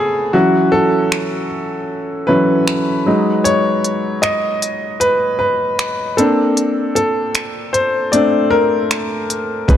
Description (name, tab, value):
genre	contemporary R&B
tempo	77 BPM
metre	4/4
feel	swing 54% on 16ths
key	unclear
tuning	A4 = 442 Hz
part	clear baby grand piano	accompaniment	0.0-9.8 s	C#3 to D#5	-14 LUFS	left 1 dB	none
part	smooth R&B drum kit	drums	1.1-9.8 s	finger snaps, hi-hat, kick drum	-20 LUFS	equal	overdrive
part	long sustained 808-style bass	bass	9.7-9.8 s	A1	-12 LUFS	equal	none
room	light reverb, digital ambience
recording	dark, warm production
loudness	-14 LUFS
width	side -10 dB against mid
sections	0.0-9.8 A section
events	break 0.0-9.7; grand piano solo 0.0-9.8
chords	0.3 A69/E; 3.1 B69/F#; 6.2 Bbmaj9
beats	| 0.34 1.11 1.89 2.67 | 3.45 4.23 5.01 5.79 | 6.57 7.35 8.13 8.91 | 9.69